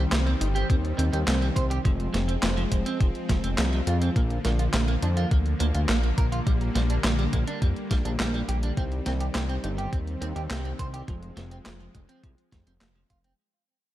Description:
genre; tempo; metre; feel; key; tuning
synthwave; 104 BPM; 4/4; straight; unclear; A4 = 441 Hz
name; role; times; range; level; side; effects
soft supersaw; sustained chords; 0.0-13.4 s; D3 to C4; -32 LUFS; left 1 dB; sidechain pumping
fat analog bass; bass; 0.0-13.3 s; F1 to F2; -26 LUFS; equal; sidechain pumping
clean electric guitar; riff; 0.1-13.3 s; F3 to C5; -34 LUFS; right 4 dB; lush chorus, vintage 12-bit sampler grit, digital delay
clean 12-bit digital drum machine; drums; 0.1-13.4 s; handclaps, hi-hat, snare drum; -31 LUFS; equal; overdrive, small room ambience
electronic kick drum; drums; 0.7-13.2 s; none; -24 LUFS; equal; overdrive, small room ambience
room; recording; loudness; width
light reverb; dark, warm production; -23 LUFS; side -14 dB against mid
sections
0.0-13.4 A section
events
fade-out 7.2-13.4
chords
0.0 Cm; 1.9 Fm; 4.2 Bb; 6.5 Gm/Bb; 8.8 Cm; 11.1 Fm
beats
0.12 0.70 1.27 | 1.85 2.43 3.00 3.58 | 4.16 4.74 5.31 5.89 | 6.47 7.04 7.62 8.20 | 8.77 9.35 9.93 10.51 | 11.08 11.66 12.24 12.81

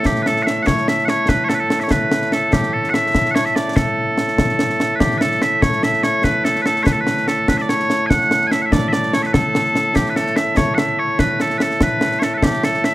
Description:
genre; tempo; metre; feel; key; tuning
scottish traditional, Scottish pipe music; 97 BPM (dotted quarters); 6/8; straight; A mixolydian; A4 = 440 Hz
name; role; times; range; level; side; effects
loud bright bagpipes; melody; 0.0-12.9 s; A2 to G#5; -17 LUFS; right 1 dB; none
concert snare drum and concert bass drum; drums; 0.1-12.9 s; none; -19 LUFS; left 1 dB; none
room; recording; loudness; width
light reverb; close, detailed microphones; -15 LUFS; side -16 dB against mid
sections
0.0-5.0 A section; 5.0-12.9 A section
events
none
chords
none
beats
| 0.06 0.67 | 1.29 1.91 | 2.53 3.15 | 3.77 4.38 | 5.00 5.62 | 6.24 6.86 | 7.48 8.10 | 8.71 9.33 | 9.95 10.57 | 11.19 11.81 | 12.43

